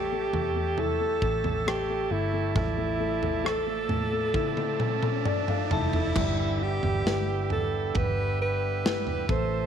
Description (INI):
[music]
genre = pop ballad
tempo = 67 BPM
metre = 4/4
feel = straight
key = unclear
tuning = A4 = 440 Hz
[part]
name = clear alto saxophone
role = melody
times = 0.0-9.7 s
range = E4 to C5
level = -30 LUFS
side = right 1 dB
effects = none
[part]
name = dark concert grand piano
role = accompaniment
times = 0.0-9.7 s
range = G3 to A5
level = -33 LUFS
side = left 11 dB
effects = none
[part]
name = tonewheel organ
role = sustained chords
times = 0.0-9.7 s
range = C3 to A5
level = -34 LUFS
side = right 12 dB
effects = overdrive, wide subtle chorus
[part]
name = vintage muted fingered electric bass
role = bass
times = 0.0-9.7 s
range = F1 to A2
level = -31 LUFS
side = equal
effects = none
[part]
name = riser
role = sound effects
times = 2.9-6.2 s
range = none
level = -39 LUFS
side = equal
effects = none
[part]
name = modern studio drum kit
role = drums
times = 0.3-9.5 s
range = crash cymbal, kick drum, rim click, snare drum, toms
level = -30 LUFS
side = right 1 dB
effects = none
[sound]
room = light reverb, studio ambience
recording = 1960s-style stereo with parts hard left and right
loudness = -25 LUFS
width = side -8 dB against mid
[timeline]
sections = 0.0-6.2 A section; 6.2-9.7 B section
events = riser 2.9-6.2; drum fill 4.3-6.2; grand piano fill 4.8-6.2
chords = 0.0 A7; 2.6 Dmadd9/A; 6.2 G6